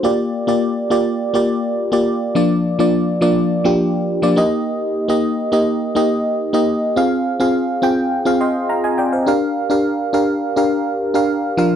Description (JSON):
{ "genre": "pop", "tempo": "104 BPM", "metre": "4/4", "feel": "straight", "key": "unclear", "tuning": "A4 = 441 Hz", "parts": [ { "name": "FM electric piano", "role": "solo", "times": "0.0-11.8 s", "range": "F3 to C6", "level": "-15 LUFS", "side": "equal", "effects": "chorus" } ], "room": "moderate booth ambience, RT60 0.2 s", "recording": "dry, close 1970s-style studio recording", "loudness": "-15 LUFS", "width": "side -9 dB against mid", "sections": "0.0-11.8 A section", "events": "FM electric piano fill 8.1-9.3", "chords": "0.0 Gm7; 2.3 Bb/F; 4.4 Eb; 7.0 Fm; 9.3 Gm7" }